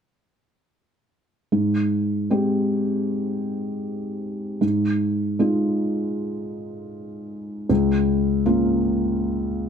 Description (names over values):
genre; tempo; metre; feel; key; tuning
folk; 78 BPM; 4/4; straight; Ab major; A4 = 438 Hz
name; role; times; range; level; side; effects
felt-muted upright piano; melody; 1.5-9.7 s; Db2 to G4; -21 LUFS; equal; none
room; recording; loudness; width
light reverb; none; -20 LUFS; side -7 dB against mid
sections
1.5-9.7 A section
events
none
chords
1.5 Abmaj7; 4.6 Fm7/Ab; 7.7 Db6